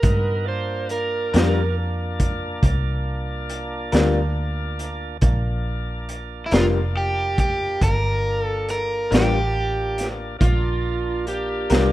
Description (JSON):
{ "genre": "slow blues", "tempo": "46 BPM (dotted quarters)", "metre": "12/8", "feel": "straight", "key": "G minor", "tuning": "A4 = 443 Hz", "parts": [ { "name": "overdriven slide guitar", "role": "second line", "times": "0.0-1.7, 10.4-11.9 s", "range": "F4 to C5", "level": "-26 LUFS", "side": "right 3 dB", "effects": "none" }, { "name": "tonewheel organ", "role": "sustained chords", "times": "0.0-11.9 s", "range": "Bb3 to A5", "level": "-31 LUFS", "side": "equal", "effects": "slow rotary speaker" }, { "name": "vintage muted fingered electric bass", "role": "bass", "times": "0.0-11.9 s", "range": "F1 to G2", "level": "-24 LUFS", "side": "equal", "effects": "none" }, { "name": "crunchy breakbeat drum kit", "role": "drums", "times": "0.0-11.9 s", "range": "hi-hat, kick drum, snare drum", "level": "-21 LUFS", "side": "equal", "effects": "none" }, { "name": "electric guitar through a small old amp", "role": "accompaniment", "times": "1.3-11.9 s", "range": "G3 to Bb4", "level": "-23 LUFS", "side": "left 5 dB", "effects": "harmonic tremolo" }, { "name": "overdriven electric guitar", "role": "melody", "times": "6.5-10.1 s", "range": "E4 to Bb4", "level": "-24 LUFS", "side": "right 1 dB", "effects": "spring reverb" } ], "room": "small room ambience", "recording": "rough home demo mix", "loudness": "-20 LUFS", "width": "side -15 dB against mid", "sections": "0.0-11.9 A section", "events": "none", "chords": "0.0 Gm7", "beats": "| 0.04 1.33 2.63 3.93 | 5.22 6.52 7.82 9.11 | 10.41 11.71" }